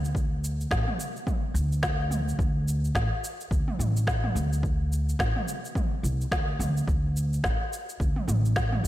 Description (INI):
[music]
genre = organic downtempo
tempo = 107 BPM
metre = 4/4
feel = swing 59% on 16ths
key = unclear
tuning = A4 = 437 Hz
[part]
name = upright bass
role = bass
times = 0.0-8.9 s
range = A1 to D2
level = -26 LUFS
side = equal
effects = sidechain pumping
[part]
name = organic electronic drum kit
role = drums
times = 0.0-8.9 s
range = shaker, snare drum, toms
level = -32 LUFS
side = equal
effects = overdrive
[part]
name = electronic kick drum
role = drums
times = 0.1-8.7 s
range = none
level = -29 LUFS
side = equal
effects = none
[sound]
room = light reverb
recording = none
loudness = -25 LUFS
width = side -14 dB against mid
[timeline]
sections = 0.0-8.9 A section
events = none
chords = none